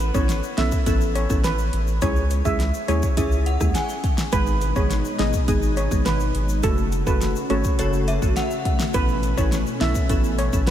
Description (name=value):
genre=dancehall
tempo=104 BPM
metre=4/4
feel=straight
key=F# dorian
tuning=A4 = 440 Hz
part: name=saturated sub bass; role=bass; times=0.0-10.7 s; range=F#1 to D#2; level=-23 LUFS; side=equal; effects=none
part: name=pop drum kit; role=drums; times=0.0-10.7 s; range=hi-hat, kick drum, rim click, snare drum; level=-24 LUFS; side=equal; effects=none
part: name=egg shaker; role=percussion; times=0.0-10.7 s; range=none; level=-39 LUFS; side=left 8 dB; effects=none
part: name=steel pan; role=melody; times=0.1-10.7 s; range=A4 to E5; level=-28 LUFS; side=right 1 dB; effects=ping-pong delay
part: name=glassy wavetable pluck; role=accompaniment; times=0.1-10.7 s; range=G#3 to A4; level=-27 LUFS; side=right 1 dB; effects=chorus
part: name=synth chime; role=second line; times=3.2-4.2, 7.8-8.8 s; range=C#5 to G#5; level=-33 LUFS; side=left 2 dB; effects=ensemble chorus, tremolo, ping-pong delay
part: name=warm analog pad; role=sustained chords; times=4.3-10.7 s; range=B2 to F#4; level=-28 LUFS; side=left 2 dB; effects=chorus, sidechain pumping
room=moderate huge ambient reverb, RT60 5.2 s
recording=dreamy mix soaked in reverb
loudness=-19 LUFS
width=side -11 dB against mid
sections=0.0-10.7 A section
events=none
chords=0.0 Aadd9; 2.0 C#m; 4.3 G#m; 6.6 F#m; 8.9 Aadd9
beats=0.29 0.87 1.44 | 2.02 2.60 3.17 3.75 | 4.33 4.91 5.48 6.06 | 6.63 7.21 7.79 8.37 | 8.94 9.52 10.10 10.67